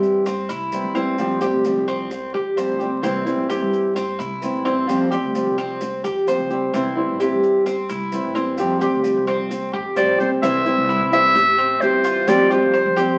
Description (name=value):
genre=latin, Cuban son and guajira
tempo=130 BPM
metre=4/4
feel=straight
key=C major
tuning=A4 = 440 Hz
part: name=flamenco guitar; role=accompaniment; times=0.0-13.2 s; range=C3 to G4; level=-24 LUFS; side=equal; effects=none
part: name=Cuban tres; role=arpeggios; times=0.0-13.2 s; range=C4 to C5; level=-25 LUFS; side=equal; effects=none
part: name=upright bass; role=bass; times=0.0-13.2 s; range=A1 to F3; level=-33 LUFS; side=equal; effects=none
part: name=maracas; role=percussion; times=0.0-13.2 s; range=none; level=-45 LUFS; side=equal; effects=none
part: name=clear clarinet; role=melody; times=10.0-13.2 s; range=C5 to E5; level=-20 LUFS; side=equal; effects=none
part: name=nylon-string guitar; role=second line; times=10.0-13.2 s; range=G4 to C5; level=-26 LUFS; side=equal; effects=none
room=wet studio reverb, RT60 0.8 s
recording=very old 78 rpm record, vinyl crackle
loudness=-20 LUFS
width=mono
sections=0.0-10.4 A section; 10.4-13.2 B section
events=none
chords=0.0 C; 1.2 Fsus2; 3.0 C; 4.9 Fsus2; 6.7 C; 8.6 Fsus2; 10.4 C; 12.3 Fsus2